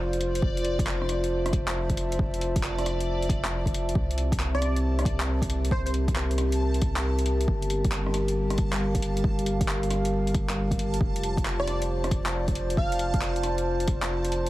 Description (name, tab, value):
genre	future garage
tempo	136 BPM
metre	4/4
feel	swing 66% on 16ths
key	G dorian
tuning	A4 = 440 Hz
part	dark analog pad	sustained chords	0.0-14.5 s	G3 to A5	-29 LUFS	equal	chorus, sidechain pumping
part	soft dub sub bass	bass	0.0-14.5 s	F1 to C2	-29 LUFS	equal	sidechain pumping
part	backwards swelling texture	texture	0.2-14.5 s	D5 to A5	-38 LUFS	equal	built-in reverb
part	deep house drum kit	drums	0.1-14.5 s	handclaps, hi-hat, rim click	-33 LUFS	equal	soft clipping on snare
part	electronic kick drum	drums	0.4-14.0 s	none	-27 LUFS	equal	none
part	plucky unison lead	melody	4.5-5.9, 11.6-13.4 s	C5 to F5	-34 LUFS	right 1 dB	analog delay
room	digital ambience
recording	dense, heavily limited modern master, vinyl crackle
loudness	-24 LUFS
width	side -16 dB against mid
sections	0.0-14.5 A section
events	none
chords	0.4 Fmaj7; 4.0 C7; 7.5 Gm7; 11.0 Dm7/F